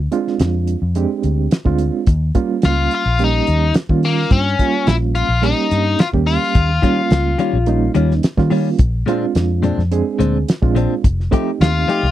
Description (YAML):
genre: straight-eighth soul blues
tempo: 107 BPM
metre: 4/4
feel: straight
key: unclear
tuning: A4 = 441 Hz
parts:
  - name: vintage muted fingered electric bass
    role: bass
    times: 0.0-12.1 s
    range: F1 to Eb3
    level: -18 LUFS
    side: left 1 dB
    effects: none
  - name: overdriven reed electric piano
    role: accompaniment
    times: 0.1-12.0 s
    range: G3 to Ab4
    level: -20 LUFS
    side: right 7 dB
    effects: fast tremolo
  - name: damped 70s drum kit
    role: drums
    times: 0.1-12.1 s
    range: hi-hat, kick drum, snare drum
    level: -15 LUFS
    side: equal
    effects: none
  - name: biting overdriven guitar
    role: melody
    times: 2.6-7.9, 11.6-12.1 s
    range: Bb3 to F4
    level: -19 LUFS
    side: left 5 dB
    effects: none
  - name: direct-recorded clean electric guitar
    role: stabs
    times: 6.8-12.1 s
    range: Bb2 to G4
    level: -19 LUFS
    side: left 5 dB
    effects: wide subtle chorus
room: little or no reverb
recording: dry, close 1970s-style studio recording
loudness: -14 LUFS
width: side -13 dB against mid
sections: 0.0-12.1 A section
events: none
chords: 0.0 Bb9 (rootless); 2.1 Eb9; 8.8 Bb9; 11.0 F9